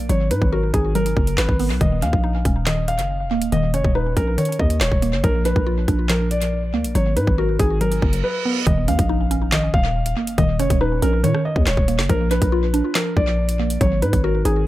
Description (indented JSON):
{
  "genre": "hip hop, drill",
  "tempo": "140 BPM",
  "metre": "4/4",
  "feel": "half-time",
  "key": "Eb minor",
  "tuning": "A4 = 438 Hz",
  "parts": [
    { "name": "dark concert grand piano", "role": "melody", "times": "0.0-14.6 s", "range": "Ab4 to F5", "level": "-24 LUFS", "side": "equal", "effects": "tape echo" },
    { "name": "mallet-like synth pluck", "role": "accompaniment", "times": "0.0-14.7 s", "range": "Eb3 to Gb4", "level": "-24 LUFS", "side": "equal", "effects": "chorus, phaser, tape echo" },
    { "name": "growling 808-style bass", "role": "bass", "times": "0.0-14.7 s", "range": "Eb1 to Bb2", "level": "-21 LUFS", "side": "equal", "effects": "none" },
    { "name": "drill drum kit", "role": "drums", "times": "0.1-14.6 s", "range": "handclaps, hi-hat, kick drum, rim click, snare drum", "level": "-22 LUFS", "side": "equal", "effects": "tape echo" },
    { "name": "reverse cymbal and impact", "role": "sound effects", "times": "8.0-10.4 s", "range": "none", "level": "-30 LUFS", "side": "right 1 dB", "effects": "none" }
  ],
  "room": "little or no reverb",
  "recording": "echo-heavy mix",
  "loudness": "-17 LUFS",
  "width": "side -15 dB against mid",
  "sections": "0.0-8.7 A section; 8.7-14.7 B section",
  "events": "reverse cymbal 8.0-8.7; impact 8.7-10.4",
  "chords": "0.1 Abm7; 1.8 Eb7(no3); 5.2 Bb; 7.0 Abm7; 8.7 Eb7(no3); 12.1 Bb; 13.8 Ab7(no3)"
}